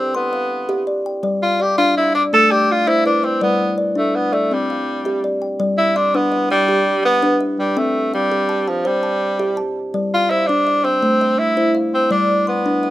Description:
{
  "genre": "southern african traditional, mbira-style interlocking cycle",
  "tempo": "110 BPM (dotted quarters)",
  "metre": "12/8",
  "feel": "straight",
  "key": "G mixolydian",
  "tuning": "A4 = 440 Hz",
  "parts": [
    { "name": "clear tenor saxophone", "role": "melody", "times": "0.0-12.9 s", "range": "F3 to A4", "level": "-16 LUFS", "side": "equal", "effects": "slapback echo" },
    { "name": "kalimba", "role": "arpeggios", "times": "0.0-12.9 s", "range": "G3 to C6", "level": "-19 LUFS", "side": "left 1 dB", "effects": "slapback echo" }
  ],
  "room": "little or no reverb",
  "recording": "recorded outdoors, with no room sound",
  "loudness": "-15 LUFS",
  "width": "side -15 dB against mid",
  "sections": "0.0-5.6 A section; 5.6-12.9 B section",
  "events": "none",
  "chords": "0.0 C; 1.2 G5; 2.3 Am; 3.4 G; 4.5 C; 5.6 G; 7.8 C; 9.9 G5; 11.0 Am; 12.1 G"
}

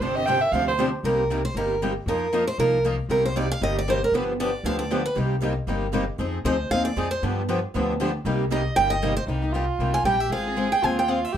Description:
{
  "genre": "acoustic string swing (jazz manouche)",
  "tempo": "233 BPM",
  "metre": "4/4",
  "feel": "swing 56% on 8ths",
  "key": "C minor",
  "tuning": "A4 = 440 Hz",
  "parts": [
    { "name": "warm violin", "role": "second line", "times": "0.0-0.7, 9.3-11.4 s", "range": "Eb4 to G5", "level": "-25 LUFS", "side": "right 4 dB", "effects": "none" },
    { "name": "picked steel-string acoustic guitar", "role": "accompaniment", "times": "0.0-11.4 s", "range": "C3 to Bb4", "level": "-28 LUFS", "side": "left 4 dB", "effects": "none" },
    { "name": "picked steel-string acoustic guitar", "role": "accompaniment", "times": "0.0-9.1 s", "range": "C3 to Bb4", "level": "-29 LUFS", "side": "right 5 dB", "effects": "none" },
    { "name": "upright bass", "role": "bass", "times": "0.0-11.4 s", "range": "G1 to G2", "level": "-28 LUFS", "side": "left 1 dB", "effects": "none" },
    { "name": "picked steel-string acoustic guitar", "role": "melody", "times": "1.1-11.4 s", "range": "Bb4 to Ab5", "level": "-24 LUFS", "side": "right 2 dB", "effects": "none" }
  ],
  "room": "wet studio ambience, RT60 0.5 s",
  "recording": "none",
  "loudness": "-21 LUFS",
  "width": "side -9 dB against mid",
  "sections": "0.0-1.0 A section; 1.0-9.3 A section; 9.3-11.4 A section",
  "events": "violin solo 0.0-1.0; steel-string acoustic guitar solo 1.0-11.4",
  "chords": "0.0 G7sus4; 1.0 Cm7; 2.1 F7sus4; 3.1 Cm7; 4.1 G7; 5.2 Cm7; 6.2 Fm7; 7.2 G7; 8.3 Cm7; 10.3 Ab6"
}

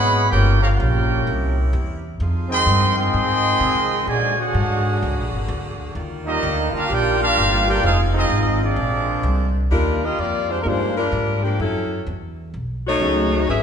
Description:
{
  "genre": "jazz, big band swing",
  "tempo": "128 BPM",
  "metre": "4/4",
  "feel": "swing 66% on 8ths",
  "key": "Eb major",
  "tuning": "A4 = 437 Hz",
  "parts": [
    { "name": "clear trumpet section", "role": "melody", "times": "0.0-9.6 s", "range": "Bb3 to C6", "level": "-20 LUFS", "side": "equal", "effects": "none" },
    { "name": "clear trombone section", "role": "second line", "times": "0.0-9.6 s", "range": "Ab2 to G4", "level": "-24 LUFS", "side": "right 3 dB", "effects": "none" },
    { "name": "bright saxophone section", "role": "sustained chords", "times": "0.0-9.7 s", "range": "C3 to Ab4", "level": "-30 LUFS", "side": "left 1 dB", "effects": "none" },
    { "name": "upright bass", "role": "bass", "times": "0.0-13.6 s", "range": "F1 to C3", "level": "-21 LUFS", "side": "equal", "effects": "none" },
    { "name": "clear saxophone section", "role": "melody", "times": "9.7-13.6 s", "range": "F3 to E5", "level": "-21 LUFS", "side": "left 2 dB", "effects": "none" },
    { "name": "warm baby grand piano", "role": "accompaniment", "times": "9.7-13.3 s", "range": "F#3 to G#4", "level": "-25 LUFS", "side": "equal", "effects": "none" }
  ],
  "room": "wet recital hall reverb, RT60 1.6 s",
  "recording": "recorded in a church or concert hall, nothing above 11.0 kHz",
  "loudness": "-17 LUFS",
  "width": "side -7 dB against mid",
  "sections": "0.0-9.7 A section; 9.7-13.6 B section",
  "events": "none",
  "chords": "0.3 Gm7b5; 1.3 C7b9; 2.2 Fm9; 4.1 Bb7alt; 6.0 Ebmaj9; 7.8 Fm7; 8.8 Bb9; 9.7 Ebmaj9; 11.6 Gbm7; 12.5 B13"
}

